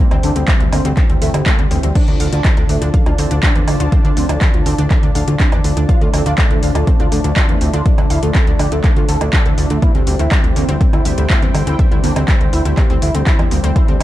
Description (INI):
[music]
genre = melodic techno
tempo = 122 BPM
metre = 4/4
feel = straight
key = D minor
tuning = A4 = 440 Hz
[part]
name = expressive synth lead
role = melody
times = 0.0-14.0 s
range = D3 to A4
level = -23 LUFS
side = equal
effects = ensemble chorus, sidechain pumping, ping-pong delay
[part]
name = sweeping resonant pad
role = sustained chords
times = 0.0-14.0 s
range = E4 to A5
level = -29 LUFS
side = right 2 dB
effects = chorus, sidechain pumping
[part]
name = analog pluck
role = arpeggios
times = 0.0-14.0 s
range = Bb3 to F5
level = -27 LUFS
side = right 1 dB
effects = chorus, sidechain pumping, tape echo
[part]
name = analog synth brass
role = stabs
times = 0.0-14.0 s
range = G2 to D4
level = -25 LUFS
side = left 3 dB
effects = chorus, sidechain pumping, tape echo
[part]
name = analog drone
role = drone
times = 0.1-14.0 s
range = D3 to D4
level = -34 LUFS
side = equal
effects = none
[part]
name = fat analog bass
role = bass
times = 0.1-14.0 s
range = D2 to E2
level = -17 LUFS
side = equal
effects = sidechain pumping
[part]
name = deep house drum kit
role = drums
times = 0.1-14.0 s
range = crash cymbal, handclaps, hi-hat, woodblock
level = -23 LUFS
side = right 1 dB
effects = overdrive, sidechain pumping on hats, studio reverb, sidechain pumping on perc, sidechain pumping on cymbals
[part]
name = electronic kick drum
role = drums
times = 0.5-13.9 s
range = none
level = -14 LUFS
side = equal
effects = overdrive, studio reverb
[sound]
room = digital ambience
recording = dark, warm production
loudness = -12 LUFS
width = side -14 dB against mid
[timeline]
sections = 0.0-14.0 A section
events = none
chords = 0.0 C/D; 2.0 Dm; 9.8 C/D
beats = 0.48 0.97 1.46 | 1.96 2.45 2.94 3.43 | 3.92 4.41 4.91 5.40 | 5.89 6.38 6.87 7.37 | 7.86 8.35 8.84 9.33 | 9.82 10.32 10.81 11.30 | 11.79 12.28 12.78 13.27 | 13.76